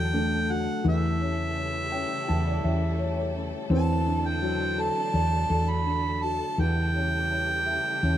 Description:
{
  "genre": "folk",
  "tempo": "84 BPM",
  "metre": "4/4",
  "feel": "straight",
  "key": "unclear",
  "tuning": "A4 = 439 Hz",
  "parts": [
    { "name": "mellow harmonica", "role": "melody", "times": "0.0-8.2 s", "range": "E5 to B5", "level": "-28 LUFS", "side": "right 1 dB", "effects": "none" },
    { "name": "felt-muted upright piano", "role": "accompaniment", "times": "0.0-8.2 s", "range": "E3 to A5", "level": "-32 LUFS", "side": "left 2 dB", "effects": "none" },
    { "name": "rich studio string section", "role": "sustained chords", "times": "0.0-8.2 s", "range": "C#3 to A4", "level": "-36 LUFS", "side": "equal", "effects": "none" },
    { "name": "woody fretless electric bass", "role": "bass", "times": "0.0-8.2 s", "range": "E2", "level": "-27 LUFS", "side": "equal", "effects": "none" },
    { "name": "felt-muted upright piano", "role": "arpeggios", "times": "0.1-8.2 s", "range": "A3 to C#4", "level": "-32 LUFS", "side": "right 1 dB", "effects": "none" }
  ],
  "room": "little or no reverb",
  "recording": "minimal, uncompressed stereo recording",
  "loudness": "-24 LUFS",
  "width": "side -11 dB against mid",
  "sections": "0.0-8.2 A section",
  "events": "none",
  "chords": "0.0 D/E; 0.8 A7/E; 3.7 D/E; 6.6 A7/E",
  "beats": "0.13 | 0.84 1.56 2.28 2.99 | 3.70 4.42 5.14 5.86 | 6.58 7.30 8.03"
}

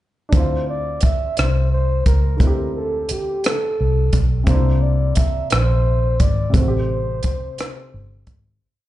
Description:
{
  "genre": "slow six-eight R&B",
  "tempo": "58 BPM (dotted quarters)",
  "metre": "6/8",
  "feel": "straight",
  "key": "D minor",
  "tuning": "A4 = 440 Hz",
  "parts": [
    { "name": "breathy flugelhorn", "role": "melody", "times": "0.3-8.2 s", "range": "G4 to E5", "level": "-25 LUFS", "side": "equal", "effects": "tape echo" },
    { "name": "dark baby grand piano", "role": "accompaniment", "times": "0.3-8.6 s", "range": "C3 to G4", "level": "-27 LUFS", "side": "right 1 dB", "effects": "none" },
    { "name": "vintage muted fingered electric bass", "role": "bass", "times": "0.3-8.6 s", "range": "G1 to D2", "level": "-18 LUFS", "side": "equal", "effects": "none" },
    { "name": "compact cocktail drum kit", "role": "drums", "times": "0.3-8.4 s", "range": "hi-hat, kick drum, rim click", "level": "-18 LUFS", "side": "equal", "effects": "none" }
  ],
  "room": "small room ambience",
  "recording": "played on a big sound system in a bare room, large studio reverb, nothing above 10.8 kHz",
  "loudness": "-16 LUFS",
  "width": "side -15 dB against mid",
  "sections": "0.3-8.6 verse",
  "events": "fade-out 6.5-8.6",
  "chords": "0.3 Dm9; 4.5 C9; 6.5 Am7",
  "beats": "| 0.34 1.37 | 2.40 3.44 | 4.47 5.51 | 6.54 7.58"
}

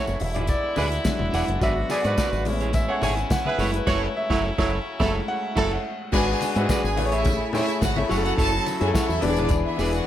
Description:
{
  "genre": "disco",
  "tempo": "106 BPM",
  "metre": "4/4",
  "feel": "straight",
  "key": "F# minor",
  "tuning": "A4 = 440 Hz",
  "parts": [
    { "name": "clear concert grand piano", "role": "accompaniment", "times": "0.0-10.1 s", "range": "E3 to G#5", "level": "-27 LUFS", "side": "left 3 dB", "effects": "none" },
    { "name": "electric guitar at the edge of break-up", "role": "accompaniment", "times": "0.0-10.0 s", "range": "E4 to E5", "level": "-31 LUFS", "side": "right 5 dB", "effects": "none" },
    { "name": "muted French horn section", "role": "sustained chords", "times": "0.0-10.1 s", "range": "C#3 to G#4", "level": "-32 LUFS", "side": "left 1 dB", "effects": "none" },
    { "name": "warm horn section", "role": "stabs", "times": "0.0-5.7 s", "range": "D3 to C#5", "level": "-28 LUFS", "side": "right 4 dB", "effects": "slapback echo" },
    { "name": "fingered electric bass with an envelope filter", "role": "bass", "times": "0.1-10.0 s", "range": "E1 to G#2", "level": "-27 LUFS", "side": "equal", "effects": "none" },
    { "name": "tambourine", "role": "percussion", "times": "0.1-10.1 s", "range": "none", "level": "-40 LUFS", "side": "left 5 dB", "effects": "none" },
    { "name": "warm soul drum kit", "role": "drums", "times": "0.2-10.1 s", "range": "crash cymbal, hi-hat, kick drum, snare drum", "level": "-27 LUFS", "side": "equal", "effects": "none" },
    { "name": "congas", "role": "percussion", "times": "0.2-9.9 s", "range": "none", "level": "-34 LUFS", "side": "left 5 dB", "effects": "none" },
    { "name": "clear studio violin section", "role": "second line", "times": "6.1-10.1 s", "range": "D4 to A5", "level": "-27 LUFS", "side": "right 1 dB", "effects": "none" }
  ],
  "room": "light reverb, studio reverb",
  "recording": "none",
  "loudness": "-21 LUFS",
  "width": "side -11 dB against mid",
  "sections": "0.0-6.1 A section; 6.1-10.1 B section",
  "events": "grand piano solo 0.0-6.1; band accent 3.9-6.1",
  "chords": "0.2 E7; 1.6 G#m7b5; 2.5 Amaj7; 3.6 F#m7; 6.1 G#m7b5; 7.0 Amaj7; 8.1 F#m7; 9.2 E7",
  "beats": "0.50 1.06 | 1.62 2.19 2.75 3.31 | 3.88 4.44 5.00 5.57 | 6.13 6.69 7.26 7.82 | 8.38 8.95 9.51"
}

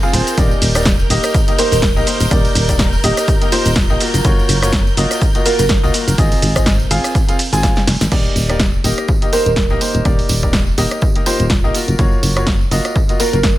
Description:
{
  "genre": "piano house",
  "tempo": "124 BPM",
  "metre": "4/4",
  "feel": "swing 56% on 16ths",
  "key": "Eb major",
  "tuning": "A4 = 440 Hz",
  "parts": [
    { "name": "string machine, violins", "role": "sustained chords", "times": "0.0-8.1 s", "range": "Bb4 to G6", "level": "-25 LUFS", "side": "right 1 dB", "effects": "ensemble chorus, sidechain pumping" },
    { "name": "clear concert grand piano", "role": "riff", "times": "0.0-13.4 s", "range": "Bb3 to Ab5", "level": "-20 LUFS", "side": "left 1 dB", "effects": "sidechain pumping, digital delay" },
    { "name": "tambourine", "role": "percussion", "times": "0.0-13.5 s", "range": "none", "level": "-29 LUFS", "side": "right 2 dB", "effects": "none" },
    { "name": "solid FM bass", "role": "bass", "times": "0.1-13.6 s", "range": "Eb1 to Db2", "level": "-17 LUFS", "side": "equal", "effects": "tube saturation, sidechain pumping" },
    { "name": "punchy analog drum machine", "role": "drums", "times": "0.1-13.5 s", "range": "crash cymbal, hi-hat, ride cymbal, rim click, shaker, snare drum", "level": "-20 LUFS", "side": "equal", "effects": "none" },
    { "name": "electronic kick drum", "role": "drums", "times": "0.4-13.5 s", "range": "none", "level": "-16 LUFS", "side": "equal", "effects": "none" },
    { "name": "kalimba", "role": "melody", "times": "1.6-13.4 s", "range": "F4 to C5", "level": "-21 LUFS", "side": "right 2 dB", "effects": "digital delay" }
  ],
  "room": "digital ambience",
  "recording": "none",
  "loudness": "-12 LUFS",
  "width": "side -15 dB against mid",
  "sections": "0.0-8.1 A section; 8.1-13.6 B section",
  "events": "drop 0.0-8.1; drum fill 7.6-8.1",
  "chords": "0.4 Ebmaj7; 4.0 Gbmaj7; 6.2 Ab6; 8.1 Ebmaj7; 11.7 Gbmaj7",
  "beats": "| 0.38 0.86 1.34 1.83 | 2.31 2.80 3.28 3.76 | 4.25 4.73 5.21 5.70 | 6.18 6.67 7.15 7.63 | 8.12 8.60 9.09 9.57 | 10.05 10.54 11.02 11.51 | 11.99 12.47 12.96 13.44"
}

